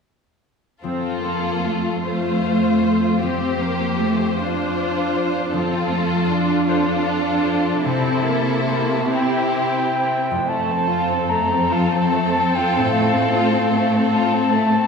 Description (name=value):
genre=classical, slow romantic movement for symphony orchestra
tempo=42-54 BPM (dotted quarters)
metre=6/8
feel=rubato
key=F major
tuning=A4 = 440 Hz
part: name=rich chamber violin section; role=melody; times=0.8-14.9 s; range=G4 to C5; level=-26 LUFS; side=left 3 dB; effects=none
part: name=rich chamber violin section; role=second line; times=0.8-14.9 s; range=A3 to G4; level=-25 LUFS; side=left 2 dB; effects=none
part: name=warm studio viola section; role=accompaniment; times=0.8-14.9 s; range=A3 to D4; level=-23 LUFS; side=right 1 dB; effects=none
part: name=concert harp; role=arpeggios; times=0.8-14.9 s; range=F2 to F5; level=-26 LUFS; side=left 1 dB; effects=none
part: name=warm chamber cello section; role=bass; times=0.8-14.9 s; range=F2 to C3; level=-24 LUFS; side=equal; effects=none
part: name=concert flute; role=second line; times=9.1-14.9 s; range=F5 to Bb5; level=-21 LUFS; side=equal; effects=none
room=wet scoring stage reverb, RT60 1.5 s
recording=heard from further back in the room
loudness=-17 LUFS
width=side -5 dB against mid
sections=0.8-10.5 A section; 10.5-14.9 B section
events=none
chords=0.8 F; 7.8 C7; 10.5 F; 12.9 F/A